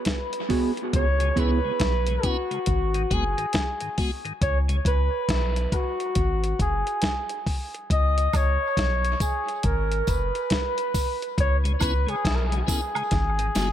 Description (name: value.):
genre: dub reggae.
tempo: 69 BPM.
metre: 4/4.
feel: swing 63% on 16ths.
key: C# dorian.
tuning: A4 = 439 Hz.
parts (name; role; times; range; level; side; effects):
mellow flugelhorn; melody; 0.0-13.7 s; F#4 to D#5; -26 LUFS; equal; dub echo.
dusty soul sampler-style drum kit; drums; 0.1-13.7 s; hi-hat, kick drum, snare drum; -27 LUFS; equal; none.
mellow electric guitar; accompaniment; 0.5-1.6 s; B3 to G#4; -28 LUFS; right 4 dB; analog chorus, dub echo.
soft dub sub bass; bass; 0.9-13.7 s; F#1 to C#2; -24 LUFS; equal; none.
tonewheel organ; accompaniment; 1.2-4.8, 11.6-13.7 s; G#2 to F#4; -32 LUFS; left 3 dB; slow rotary speaker.
tambourine and woodblock; percussion; 8.3-13.7 s; none; -36 LUFS; right 8 dB; dub echo.
room: light reverb, digital ambience.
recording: echo-heavy mix.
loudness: -22 LUFS.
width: side -11 dB against mid.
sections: 0.0-13.7 A section.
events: break 0.0-0.9; part muted 0.9-7.9; drum fill 13.1-13.7.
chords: 0.0 G#m7; 0.9 C#m7; 2.7 G#m7; 4.4 C#5; 6.2 F#sus2; 7.9 B69; 9.6 G#m7; 11.4 C#m7; 13.1 G#m7.